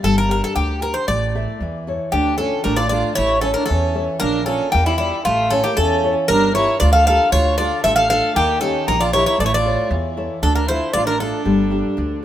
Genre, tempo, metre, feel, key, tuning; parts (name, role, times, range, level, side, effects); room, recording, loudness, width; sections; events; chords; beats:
greek folk, Greek bouzouki band; 116 BPM; 2/4; straight; D harmonic minor; A4 = 440 Hz
Greek bouzouki; melody; 0.0-12.2 s; E4 to F5; -18 LUFS; left 1 dB
nylon-string guitar; accompaniment; 0.0-12.2 s; D3 to E5; -23 LUFS; left 3 dB
upright bass; bass; 0.0-12.2 s; G1 to E2; -22 LUFS; right 1 dB
warm violin; second line; 2.1-12.2 s; G3 to A4; -23 LUFS; right 4 dB
light reverb; minimal, uncompressed stereo recording; -16 LUFS; side -11 dB against mid
0.0-2.1 A section; 2.1-10.4 B section; 10.4-12.2 A section
0.0 Gm; 1.1 A; 2.1 Dm; 3.2 A; 4.2 Bb; 5.2 A; 6.3 Gm7; 7.3 Dm; 8.4 Eb; 9.4 A; 10.4 Dm; 11.5 Gm
| 0.04 0.56 | 1.08 1.60 | 2.13 2.65 | 3.17 3.69 | 4.21 4.73 | 5.25 5.77 | 6.29 6.81 | 7.33 7.84 | 8.36 8.88 | 9.39 9.91 | 10.43 10.94 | 11.46 11.98